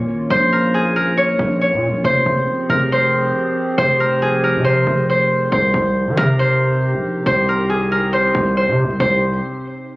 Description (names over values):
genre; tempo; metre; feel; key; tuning
hip hop, drill; 138 BPM; 4/4; half-time; C phrygian; A4 = 440 Hz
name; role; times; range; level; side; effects
concert harp; melody; 0.0-9.2 s; Ab4 to Db5; -16 LUFS; equal; low-pass filter, tape echo
warbly tape-like pad; sustained chords; 0.0-9.2 s; C3 to Ab4; -23 LUFS; equal; chorus, built-in reverb
distorted 808-style bass; bass; 0.0-9.4 s; F1 to Eb3; -20 LUFS; equal; distortion
room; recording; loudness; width
light reverb, studio reverb; recorded on a phone in the room, club reverb; -14 LUFS; side -20 dB against mid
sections
0.0-5.5 A section; 5.5-9.0 B section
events
none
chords
0.0 Bbm; 2.0 Fmadd9; 5.5 Cm